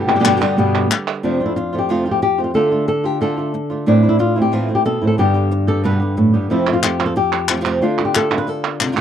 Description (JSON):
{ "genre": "flamenco", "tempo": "182 BPM", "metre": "4/4", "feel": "straight", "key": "unclear", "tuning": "A4 = 438 Hz", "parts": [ { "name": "flamenco guitar", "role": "stabs", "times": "0.0-9.0 s", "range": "F2 to G4", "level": "-22 LUFS", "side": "right 3 dB", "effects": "none" }, { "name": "flamenco guitar", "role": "melody", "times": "0.1-9.0 s", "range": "F2 to B4", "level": "-16 LUFS", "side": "left 1 dB", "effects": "none" }, { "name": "palmas hand claps", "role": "percussion", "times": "0.1-1.2, 6.7-9.0 s", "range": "none", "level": "-20 LUFS", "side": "right 1 dB", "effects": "none" } ], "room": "moderate booth ambience, RT60 0.2 s", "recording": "dry, close 1970s-style studio recording", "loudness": "-15 LUFS", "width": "side -9 dB against mid", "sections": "0.0-1.2 A section; 1.2-9.0 B section", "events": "none", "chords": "0.0 G; 1.2 F; 2.6 Dm; 3.9 Am; 5.2 G; 6.5 F; 7.8 Dm" }